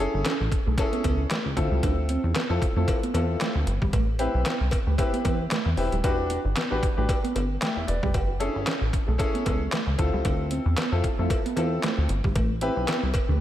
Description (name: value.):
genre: early-eighties boogie funk.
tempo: 114 BPM.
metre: 4/4.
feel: swing 56% on 16ths.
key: unclear.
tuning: A4 = 441 Hz.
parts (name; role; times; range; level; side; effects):
clear concert grand piano; accompaniment; 0.0-13.4 s; C4 to G5; -29 LUFS; left 2 dB; none.
mellow electric guitar; riff; 0.0-13.4 s; G3 to F#4; -32 LUFS; right 3 dB; ensemble chorus.
plucky analog bass; bass; 0.0-13.4 s; D#1 to F2; -25 LUFS; equal; none.
detuned 8-bit digital drum machine; drums; 0.3-13.3 s; handclaps, hi-hat, kick drum, snare drum; -27 LUFS; equal; none.
cowbell; percussion; 0.3-13.3 s; none; -37 LUFS; left 1 dB; none.
room: moderate lush hall reverb, RT60 1.8 s, digital ambience.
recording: dreamy mix soaked in reverb.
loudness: -23 LUFS.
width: side -12 dB against mid.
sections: 0.0-13.4 A section.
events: none.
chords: 0.0 F#m9 (rootless); 1.6 Dm9; 3.9 Am9; 6.0 Em9; 8.1 F#m9; 10.0 Dm9; 12.4 Am9.